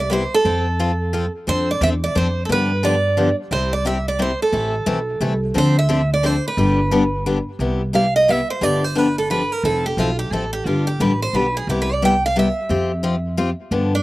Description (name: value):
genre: acoustic string swing (jazz manouche)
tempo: 176 BPM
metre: 3/4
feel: swing 61% on 8ths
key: C major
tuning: A4 = 437 Hz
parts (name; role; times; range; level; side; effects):
- picked steel-string acoustic guitar; melody; 0.0-14.0 s; D4 to G5; -20 LUFS; right 2 dB; slapback echo
- upright bass; bass; 0.0-14.0 s; F1 to G2; -22 LUFS; equal; none
- picked steel-string acoustic guitar; accompaniment; 0.1-13.9 s; C3 to A4; -21 LUFS; left 3 dB; none
room: little or no reverb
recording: recorded outdoors, with no room sound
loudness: -17 LUFS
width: side -18 dB against mid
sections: 0.0-7.6 A section; 7.6-14.0 B section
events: steel-string acoustic guitar solo 7.6-14.0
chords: 0.5 F; 1.5 Dm7; 2.5 G7; 3.5 C; 4.5 Am; 5.6 Dm7; 6.6 G; 7.6 Cmaj7; 8.6 G7; 9.6 Fmaj7; 10.7 G; 11.7 Cmaj7; 12.7 Fsus2